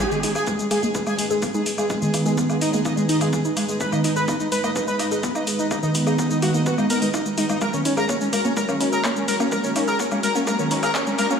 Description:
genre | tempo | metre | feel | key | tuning
melodic techno | 126 BPM | 4/4 | straight | G# minor | A4 = 441 Hz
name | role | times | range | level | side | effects
wide unison lead | melody | 0.0-11.4 s | G#3 to B4 | -24 LUFS | left 1 dB | ping-pong delay
bright symphonic violin section | second line | 0.0-11.4 s | G#4 to B5 | -30 LUFS | equal | sidechain pumping, digital delay
dark analog pad | sustained chords | 0.0-11.4 s | G#3 to B4 | -30 LUFS | right 1 dB | chorus, sidechain pumping
woody wave-folded pluck | arpeggios | 0.0-11.4 s | D#3 to B4 | -26 LUFS | left 1 dB | wide subtle chorus, sidechain pumping, digital delay
brassy analog pad | stabs | 0.0-10.7 s | D#3 to B3 | -27 LUFS | right 2 dB | chorus, sidechain pumping, digital delay
electronic kick drum | drums | 0.0-11.0 s | none | -31 LUFS | equal | high-pass filter on kick, high-pass filter on room
techno drum kit | drums | 0.0-11.4 s | handclaps, hi-hat, shaker, woodblock | -28 LUFS | left 1 dB | high-pass filter on perc, high-pass filter on hats, high-pass filter on snare, high-pass filter on room
riser | sound effects | 9.2-11.4 s | none | -32 LUFS | equal | none
room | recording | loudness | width
moderate huge ambient reverb, RT60 7.5 s | played on a big sound system in a bare room, stone room reverb, high-pass filter | -19 LUFS | side -6 dB against mid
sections
0.0-11.4 A section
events
build-up 0.0-11.4; filter sweep on synth pluck 0.0-11.4; riser 9.2-11.4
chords
0.0 G#m; 7.6 F#add9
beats
| 0.00 0.47 0.95 1.42 | 1.90 2.38 2.85 3.33 | 3.81 4.28 4.76 5.23 | 5.71 6.19 6.66 7.14 | 7.62 8.09 8.57 9.04 | 9.52 10.00 10.47 10.95

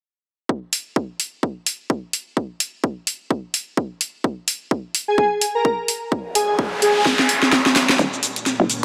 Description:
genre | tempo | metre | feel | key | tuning
bass house | 128 BPM | 4/4 | swing 58% on 16ths | Eb minor | A4 = 440 Hz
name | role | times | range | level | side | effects
electronic kick drum | drums | 0.5-7.6 s | none | -24 LUFS | equal | high-pass filter on kick
garage drum kit | drums | 0.7-8.8 s | hi-hat, shaker, snare drum | -21 LUFS | equal | overdrive
airy dreamy lead | melody | 5.1-7.0 s | Ab4 to Bb4 | -22 LUFS | equal | chorus, tape echo
noise sweep and riser | sound effects | 6.3-8.8 s | none | -26 LUFS | equal | none
deep dark ambient pad | sustained chords | 8.3-8.8 s | Bb3 to Bb4 | -38 LUFS | equal | chorus, built-in reverb, sidechain pumping
hollow knocking FM bass | bass | 8.0-8.8 s | Eb1 to Gb1 | -20 LUFS | equal | tube saturation, sidechain pumping, high-pass filter
room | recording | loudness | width
wet lush hall reverb, RT60 1.8 s, digital ambience | dreamy mix soaked in reverb | -21 LUFS | mono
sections
0.5-8.0 A section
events
noise sweep 6.3-8.0; drum fill 7.1-8.0, 8.0-8.8; riser 8.0-8.8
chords
0.5 N.C.; 8.0 Eb5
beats
| 0.49 0.96 1.43 1.90 | 2.37 2.84 3.31 3.77 | 4.24 4.71 5.18 5.65 | 6.12 6.59 7.06 7.52 | 7.99 8.46

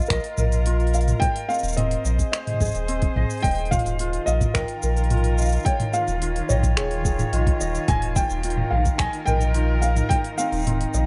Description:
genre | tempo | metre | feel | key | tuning
folktronica | 108 BPM | 4/4 | straight | Eb mixolydian | A4 = 443 Hz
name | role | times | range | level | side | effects
vibraphone with soft mallets | second line | 0.0-11.1 s | Eb5 to G5 | -36 LUFS | equal | tape echo
muted string quartet | sustained chords | 0.0-11.1 s | Eb3 to Db5 | -34 LUFS | equal | none
ukulele | arpeggios | 0.0-11.1 s | C4 to F5 | -34 LUFS | equal | tape echo
organic electronic drum kit | drums | 0.0-11.1 s | finger snaps, hi-hat, shaker, toms | -30 LUFS | equal | none
felt-muted upright piano | melody | 0.1-11.1 s | Ab4 to Ab5 | -30 LUFS | equal | tape echo
warm sub bass | bass | 0.1-11.1 s | Eb1 to Bb1 | -25 LUFS | equal | tube saturation
electronic kick drum | drums | 0.1-10.2 s | none | -26 LUFS | equal | none
room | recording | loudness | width
studio reverb | nothing above 11.0 kHz | -22 LUFS | mono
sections
0.0-11.1 A section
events
none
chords
0.0 Ebsus2; 1.2 Ab/Eb; 5.7 Db/Eb; 7.9 Ebsus2; 10.1 Ab/Eb (rootless)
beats
0.11 0.66 | 1.22 1.77 2.33 2.88 | 3.44 3.99 4.55 5.11 | 5.66 6.22 6.77 7.33 | 7.88 8.44 8.99 9.55 | 10.11 10.66

